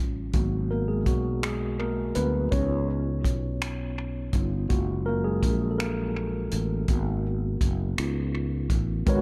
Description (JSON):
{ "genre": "slow six-eight R&B", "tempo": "55 BPM (dotted quarters)", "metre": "6/8", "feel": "straight", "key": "unclear", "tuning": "A4 = 440 Hz", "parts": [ { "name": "mellow tine electric piano", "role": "accompaniment", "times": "0.0-9.2 s", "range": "F#3 to C#5", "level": "-32 LUFS", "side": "equal", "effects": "tape echo" }, { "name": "sustaining fretless electric bass", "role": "bass", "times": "0.0-9.2 s", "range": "F#1 to D2", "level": "-31 LUFS", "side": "equal", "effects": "none" }, { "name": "warm soul drum kit", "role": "drums", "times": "0.3-9.2 s", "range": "finger snaps, hi-hat, kick drum", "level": "-30 LUFS", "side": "equal", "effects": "tape echo" }, { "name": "warm analog pad", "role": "sustained chords", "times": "9.1-9.2 s", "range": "C#3 to F#4", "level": "-30 LUFS", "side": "equal", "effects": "chorus" } ], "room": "light reverb, small room ambience", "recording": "echo-heavy mix", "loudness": "-27 LUFS", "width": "mono", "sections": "0.0-9.1 A section", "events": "tine electric piano solo 0.0-9.1", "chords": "0.3 G#m9; 2.5 C#7; 4.7 F#maj9; 6.9 G#m7; 8.0 C#7" }